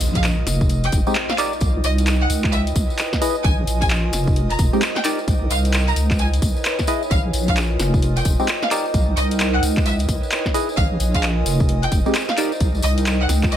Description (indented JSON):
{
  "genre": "UK garage, two-step garage",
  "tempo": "131 BPM",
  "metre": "4/4",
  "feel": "swing 62% on 16ths",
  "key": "unclear",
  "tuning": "A4 = 439 Hz",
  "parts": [
    { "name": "airy breathy pad", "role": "sustained chords", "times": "0.0-13.6 s", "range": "Eb5", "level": "-33 LUFS", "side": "right 4 dB", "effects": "chorus, sidechain pumping" },
    { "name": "deep soft wobble bass", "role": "bass", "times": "0.0-13.6 s", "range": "F1 to Db2", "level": "-20 LUFS", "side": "equal", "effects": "chorus, tube saturation, sidechain pumping" },
    { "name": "house drum kit", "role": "drums", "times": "0.0-13.6 s", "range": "handclaps, hi-hat, snare drum", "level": "-25 LUFS", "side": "equal", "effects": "studio reverb" },
    { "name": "tambourine", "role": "percussion", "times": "0.0-13.6 s", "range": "none", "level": "-32 LUFS", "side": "left 4 dB", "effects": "none" },
    { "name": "impact", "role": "sound effects", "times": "0.0-1.6 s", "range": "none", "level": "-30 LUFS", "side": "equal", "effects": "none" },
    { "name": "warbly tape-like pad", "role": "texture", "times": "0.0-13.6 s", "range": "Eb4 to Ab5", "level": "-28 LUFS", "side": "equal", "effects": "chorus, built-in reverb, sidechain pumping" },
    { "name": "dark symphonic violin section", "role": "melody", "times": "0.2-13.6 s", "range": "Eb5 to Bb5", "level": "-27 LUFS", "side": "right 1 dB", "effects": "tape echo" },
    { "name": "electronic kick drum", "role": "drums", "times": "0.2-13.5 s", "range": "none", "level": "-21 LUFS", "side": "equal", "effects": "studio reverb" },
    { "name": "percussive organ stab", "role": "stabs", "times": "1.1-12.5 s", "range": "Ab3 to Eb5", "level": "-23 LUFS", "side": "equal", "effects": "chorus, phaser" }
  ],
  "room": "light reverb, digital ambience",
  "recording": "vinyl crackle",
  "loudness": "-17 LUFS",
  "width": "side -10 dB against mid",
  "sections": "0.0-13.6 A section",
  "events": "impact 0.0-1.6",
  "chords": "0.5 Fm7; 1.4 Cm7; 2.3 Dbm7; 3.4 Bbm7; 4.1 Fm7; 5.0 Cm7; 6.0 Dbm7; 7.1 Bbm7; 7.8 Fm7; 8.7 Cm7; 9.6 Dbm7; 10.8 Bbm7; 11.5 Fm7; 12.4 Cm7"
}